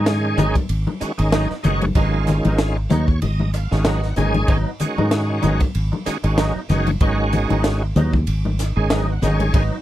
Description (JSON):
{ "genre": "electric jazz fusion", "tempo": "95 BPM", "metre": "4/4", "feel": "swing 56% on 16ths", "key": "G# dorian", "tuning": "A4 = 440 Hz", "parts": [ { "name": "bright tonewheel organ", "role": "accompaniment", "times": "0.0-9.6 s", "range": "D#3 to G#5", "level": "-23 LUFS", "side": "right 1 dB", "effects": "slow rotary speaker, chorus vibrato" }, { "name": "clean electric guitar", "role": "stabs", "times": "0.0-9.7 s", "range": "F#3 to D#4", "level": "-26 LUFS", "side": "right 2 dB", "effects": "ensemble chorus" }, { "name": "fingered electric bass", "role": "bass", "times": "0.0-9.7 s", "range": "F#1 to G#2", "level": "-20 LUFS", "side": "equal", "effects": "none" }, { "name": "crisp fusion drum kit", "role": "drums", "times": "0.1-9.7 s", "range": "hi-hat, kick drum, ride cymbal, snare drum", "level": "-24 LUFS", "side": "equal", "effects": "none" }, { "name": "congas", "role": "percussion", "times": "0.4-9.5 s", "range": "none", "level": "-23 LUFS", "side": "left 3 dB", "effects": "none" } ], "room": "little or no reverb", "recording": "none", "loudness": "-17 LUFS", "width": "side -14 dB against mid", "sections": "0.0-9.8 A section", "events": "tonewheel organ fill 2.6-4.5, 8.6-9.5", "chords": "0.0 G#m7", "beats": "0.07 0.70 1.33 | 1.96 2.59 3.22 3.85 | 4.49 5.12 5.75 6.38 | 7.01 7.64 8.28 8.91 | 9.54" }